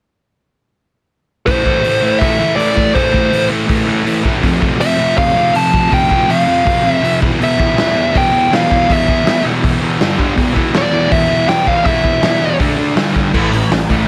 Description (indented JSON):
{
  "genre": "punk rock",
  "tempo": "162 BPM",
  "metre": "4/4",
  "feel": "straight",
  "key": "A minor",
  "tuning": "A4 = 438 Hz",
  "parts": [
    { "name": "dark smooth lead guitar", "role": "melody", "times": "1.5-12.6 s", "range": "C5 to A5", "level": "-16 LUFS", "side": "equal", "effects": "overdrive" },
    { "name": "sludgy distorted guitar", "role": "riff", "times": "1.5-14.1 s", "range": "E2 to D4", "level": "-20 LUFS", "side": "equal", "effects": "overdrive" },
    { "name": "sludgy distorted guitar", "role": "riff", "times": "1.5-14.1 s", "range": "E2 to D4", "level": "-21 LUFS", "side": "equal", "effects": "overdrive" },
    { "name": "raw garage drum kit", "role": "drums", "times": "1.5-14.0 s", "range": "crash cymbal, hi-hat, kick drum, snare drum", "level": "-19 LUFS", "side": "equal", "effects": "none" },
    { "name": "modern bright picked electric bass", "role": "bass", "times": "13.3-14.0 s", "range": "A1", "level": "-21 LUFS", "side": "equal", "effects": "none" }
  ],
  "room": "moderate studio reverb, RT60 0.5 s",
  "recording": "none",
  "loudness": "-14 LUFS",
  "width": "mono",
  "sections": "1.5-13.3 A section",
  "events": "none",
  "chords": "1.5 Am; 4.4 F; 7.2 E5; 10.0 G5; 10.4 E5; 12.6 D5; 13.0 G5; 13.3 A5",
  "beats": "| 1.47 1.84 2.21 2.58 | 2.95 3.32 3.69 4.06 | 4.43 4.80 5.17 5.54 | 5.92 6.29 6.66 7.03 | 7.40 7.77 8.14 8.51 | 8.88 9.26 9.63 10.00 | 10.37 10.74 11.11 11.48 | 11.86 12.23 12.60 12.97 | 13.34 13.71"
}